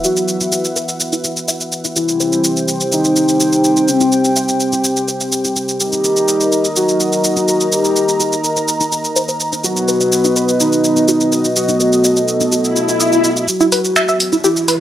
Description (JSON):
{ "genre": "melodic techno", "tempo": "125 BPM", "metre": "4/4", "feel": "straight", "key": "E harmonic minor", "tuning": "A4 = 441 Hz", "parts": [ { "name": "soft octave-layered synth lead", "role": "melody", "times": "0.0-14.8 s", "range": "C4 to G4", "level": "-16 LUFS", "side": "left 1 dB", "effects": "chorus, cassette tape, analog delay" }, { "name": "dark analog pad", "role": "sustained chords", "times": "0.0-14.8 s", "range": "B3 to A#5", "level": "-17 LUFS", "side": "equal", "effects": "chorus" }, { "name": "tight sequenced synth", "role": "arpeggios", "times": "0.0-14.7 s", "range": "D#4 to D#6", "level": "-20 LUFS", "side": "equal", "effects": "chorus, analog delay" }, { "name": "deep house drum kit", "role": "drums", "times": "0.0-14.8 s", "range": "finger snaps, hi-hat, shaker", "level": "-19 LUFS", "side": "equal", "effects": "overdrive, studio reverb" }, { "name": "sub drop, swell and riser", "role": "sound effects", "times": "0.0, 12.7-14.8 s", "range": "none", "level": "-18 LUFS", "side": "left 2 dB", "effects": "none" } ], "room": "moderate lush hall reverb, RT60 1.7 s", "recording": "dry, gritty hardware recording, transformer saturation", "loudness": "-12 LUFS", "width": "side -12 dB against mid", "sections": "0.0-13.5 A section; 13.5-14.8 B section", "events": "filter sweep on soft synth lead 0.0-13.5, 13.5-14.8; swell 12.7-13.5; build-up 13.5-14.8; riser 13.5-14.8", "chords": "0.0 E5; 2.0 C; 5.8 D#6; 9.6 B; 13.5 E5", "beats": "| 0.04 0.52 1.00 1.48 | 1.96 2.44 2.92 3.40 | 3.88 4.36 4.84 5.32 | 5.80 6.28 6.76 7.24 | 7.72 8.20 8.68 9.16 | 9.64 10.12 10.60 11.08 | 11.56 12.04 12.52 13.00 | 13.48 13.96 14.44" }